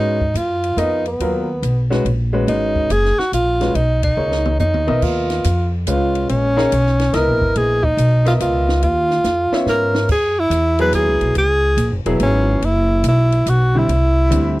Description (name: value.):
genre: modal jazz.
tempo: 142 BPM.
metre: 3/4.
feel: swing 66% on 8ths.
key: Eb phrygian from 5.0 s.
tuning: A4 = 440 Hz.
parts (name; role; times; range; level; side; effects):
warm tenor saxophone; melody; 0.0-14.6 s; Cb4 to Cb5; -18 LUFS; equal; none.
warm concert grand piano; accompaniment; 0.0-14.6 s; D3 to E5; -21 LUFS; left 1 dB; none.
upright bass; bass; 0.0-14.6 s; Fb1 to Ab2; -18 LUFS; equal; none.
compact cocktail drum kit; drums; 0.2-14.4 s; crash cymbal, hi-hat, kick drum, ride cymbal, snare drum, toms; -27 LUFS; equal; none.
room: little or no reverb.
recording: dry, close 1970s-style studio recording.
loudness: -14 LUFS.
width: side -18 dB against mid.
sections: 0.0-5.0 A section; 5.0-14.6 B section.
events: band accent 4.0; drum fill 4.2-5.0, 9.2-10.1.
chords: 0.0 Abm9; 5.0 Eb9sus4; 10.1 Gb9sus4; 13.9 C.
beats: 0.36 0.78 | 1.21 1.63 2.05 | 2.48 2.90 3.33 | 3.75 4.17 4.60 | 5.02 5.44 5.87 | 6.29 6.71 7.13 | 7.56 7.98 8.40 | 8.82 9.25 9.67 | 10.09 10.51 10.94 | 11.36 11.78 12.20 | 12.62 13.05 13.47 | 13.89 14.31.